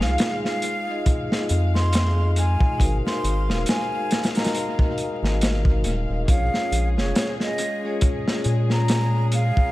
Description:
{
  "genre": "trip hop",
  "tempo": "69 BPM",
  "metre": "4/4",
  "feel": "swing 56% on 16ths",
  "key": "Bb minor",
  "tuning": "A4 = 440 Hz",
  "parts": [
    { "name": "breathy concert flute", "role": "melody", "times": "0.0-9.7 s", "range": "Db5 to C6", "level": "-29 LUFS", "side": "right 1 dB", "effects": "tape echo" },
    { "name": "vibraphone with medium hard mallets", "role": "accompaniment", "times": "0.0-9.7 s", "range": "Db4 to Eb5", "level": "-29 LUFS", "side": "left 2 dB", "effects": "tremolo, tape echo" },
    { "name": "dark studio string section", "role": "sustained chords", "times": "0.0-9.7 s", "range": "Ab3 to F5", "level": "-32 LUFS", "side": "left 2 dB", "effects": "none" },
    { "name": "round analog bass", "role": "bass", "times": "0.0-9.5 s", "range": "Eb1 to Bb2", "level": "-21 LUFS", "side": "equal", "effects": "none" },
    { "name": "crunchy breakbeat drum kit", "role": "drums", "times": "0.0-9.7 s", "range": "hi-hat, kick drum, snare drum", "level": "-23 LUFS", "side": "equal", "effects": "tape echo" }
  ],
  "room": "light reverb, small room ambience",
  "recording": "echo-heavy mix, vinyl crackle",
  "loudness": "-20 LUFS",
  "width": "side -17 dB against mid",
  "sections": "0.0-9.7 A section",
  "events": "none",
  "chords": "0.0 Fm7; 2.8 Ab7; 6.3 Bbm7"
}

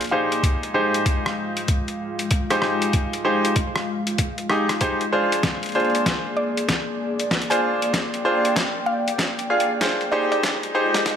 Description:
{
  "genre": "glitch hop",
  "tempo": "96 BPM",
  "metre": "4/4",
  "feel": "swing 64% on 16ths",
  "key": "F dorian",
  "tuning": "A4 = 440 Hz",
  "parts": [
    { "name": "dark analog pad", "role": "sustained chords", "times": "0.0-11.2 s", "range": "Ab3 to G5", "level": "-27 LUFS", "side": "left 1 dB", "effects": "chorus, vintage 12-bit sampler grit, sidechain pumping" },
    { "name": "boom bap sampler-style drum kit", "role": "drums", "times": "0.0-11.2 s", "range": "hi-hat, rim click, snare drum", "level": "-26 LUFS", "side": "left 1 dB", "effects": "studio reverb" },
    { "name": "woody wave-folded pluck", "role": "melody", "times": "0.1-0.5, 6.4-10.4 s", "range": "D5 to Ab5", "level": "-29 LUFS", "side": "equal", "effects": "chorus, dub echo" },
    { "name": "bright grand piano", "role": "stabs", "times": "0.1-11.2 s", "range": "D4 to F5", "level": "-22 LUFS", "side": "equal", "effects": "sidechain pumping, low-pass filter, dub echo" },
    { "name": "electronic kick drum", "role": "drums", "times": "0.4-11.2 s", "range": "none", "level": "-24 LUFS", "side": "equal", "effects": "studio reverb" }
  ],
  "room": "moderate lush hall reverb, RT60 2.0 s",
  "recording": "high-pass filter",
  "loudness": "-19 LUFS",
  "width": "side -8 dB against mid",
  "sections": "0.0-11.2 A section",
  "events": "build-up 0.0-11.2; drum fill 5.4-11.2",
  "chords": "0.4 Fm7; 5.4 Bb7; 10.4 Fm7"
}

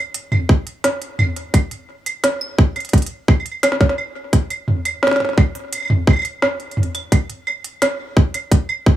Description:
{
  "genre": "IDM",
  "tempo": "86 BPM",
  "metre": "4/4",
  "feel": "straight",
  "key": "none",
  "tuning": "none",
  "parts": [
    { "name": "organic electronic drum kit", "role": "drums", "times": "0.1-8.8 s", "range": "claves, hi-hat, snare drum, toms", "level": "-19 LUFS", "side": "right 1 dB", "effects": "overdrive" },
    { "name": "electronic kick drum", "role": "drums", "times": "0.5-9.0 s", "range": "none", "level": "-12 LUFS", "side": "equal", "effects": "overdrive" }
  ],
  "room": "little or no reverb",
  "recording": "none",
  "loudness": "-16 LUFS",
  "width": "side -13 dB against mid",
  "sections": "0.0-9.0 A section",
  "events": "none",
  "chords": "none"
}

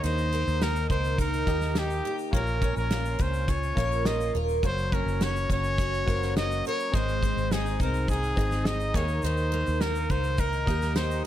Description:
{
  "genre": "acoustic pop",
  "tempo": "104 BPM",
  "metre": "4/4",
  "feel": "straight",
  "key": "unclear",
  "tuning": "A4 = 438 Hz",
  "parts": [
    { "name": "breathy trumpet", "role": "melody", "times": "0.0-11.2 s", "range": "G4 to Eb5", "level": "-30 LUFS", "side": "equal", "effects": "plate reverb, ping-pong delay" },
    { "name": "clear grand piano", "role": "accompaniment", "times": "0.0-11.3 s", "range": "Bb3 to Eb5", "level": "-38 LUFS", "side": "left 3 dB", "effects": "plate reverb" },
    { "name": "picked twelve-string acoustic guitar", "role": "accompaniment", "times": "0.0-11.3 s", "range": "Ab2 to Bb4", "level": "-32 LUFS", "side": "equal", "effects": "double-tracked left and right, plate reverb" },
    { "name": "vintage muted fingered electric bass", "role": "bass", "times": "0.0-11.2 s", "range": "Eb1 to Eb2", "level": "-29 LUFS", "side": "equal", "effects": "none" },
    { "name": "loose indie drum kit", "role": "drums", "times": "0.0-11.2 s", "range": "kick drum, shaker, snare drum", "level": "-30 LUFS", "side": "equal", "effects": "none" }
  ],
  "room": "light reverb",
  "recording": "none",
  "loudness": "-24 LUFS",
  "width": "side -12 dB against mid",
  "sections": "0.0-11.3 A section",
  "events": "none",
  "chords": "0.0 Eb; 2.3 Bbm; 4.6 Gb; 6.9 Ab; 8.9 Eb"
}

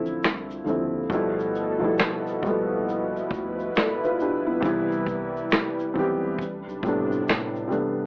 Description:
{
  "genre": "lo-fi hip hop",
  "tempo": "68 BPM",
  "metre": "4/4",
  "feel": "swing 62% on 16ths",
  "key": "unclear",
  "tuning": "A4 = 440 Hz",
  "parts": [
    { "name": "felt-muted upright piano", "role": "accompaniment", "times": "0.0-8.1 s", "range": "B2 to D5", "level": "-25 LUFS", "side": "equal", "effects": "cassette tape" },
    { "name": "saturated sub bass", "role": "bass", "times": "0.0-8.1 s", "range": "A1 to A2", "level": "-36 LUFS", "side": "equal", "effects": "transformer saturation" },
    { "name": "vintage brush drum kit", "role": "drums", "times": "0.1-8.0 s", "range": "finger snaps, hi-hat, kick drum, shaker, snare drum", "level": "-24 LUFS", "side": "equal", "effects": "none" },
    { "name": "warm analog pad", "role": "sustained chords", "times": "1.6-8.1 s", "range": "C3 to B4", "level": "-31 LUFS", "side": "equal", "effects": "chorus" }
  ],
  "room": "moderate studio reverb, RT60 0.6 s",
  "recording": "worn, warbling old tape, cassette tape, warbly pitch drift, AM radio sound",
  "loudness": "-23 LUFS",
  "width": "side -29 dB against mid",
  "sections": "0.0-8.1 A section",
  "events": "none",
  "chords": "0.0 Dm9; 1.1 G13; 4.6 Cmaj7; 6.4 Am11"
}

